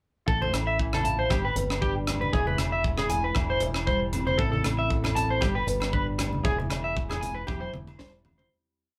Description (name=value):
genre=highlife guitar band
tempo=116 BPM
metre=4/4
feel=swing 55% on 16ths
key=A minor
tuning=A4 = 440 Hz
part: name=nylon-string guitar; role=accompaniment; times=0.3-9.0 s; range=A2 to B4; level=-37 LUFS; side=equal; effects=none
part: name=electric guitar at the edge of break-up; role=arpeggios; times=0.3-8.5 s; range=G4 to A5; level=-31 LUFS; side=equal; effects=none
part: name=fingered electric bass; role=bass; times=0.3-8.5 s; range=E1 to A1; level=-33 LUFS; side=equal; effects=none
part: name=tight funk drum kit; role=drums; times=0.3-8.5 s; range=hi-hat, kick drum, rim click, snare drum, toms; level=-32 LUFS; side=equal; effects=none
part: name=congas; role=percussion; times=0.4-8.5 s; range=none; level=-38 LUFS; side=equal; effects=none
part: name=agogo bells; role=percussion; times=0.5-8.4 s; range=none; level=-40 LUFS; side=equal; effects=none
room=moderate studio reverb, RT60 0.5 s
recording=band playing live in one room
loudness=-27 LUFS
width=mono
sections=0.3-8.5 groove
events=fade-out 6.4-8.5; drum fill 7.5-8.5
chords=0.3 Am; 1.3 G; 2.3 E; 3.4 C/E; 4.4 Am; 5.4 G; 6.4 E; 7.5 C/E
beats=| 0.27 0.78 1.30 1.81 | 2.33 2.85 3.36 3.88 | 4.39 4.91 5.42 5.93 | 6.45 6.96 7.48 7.99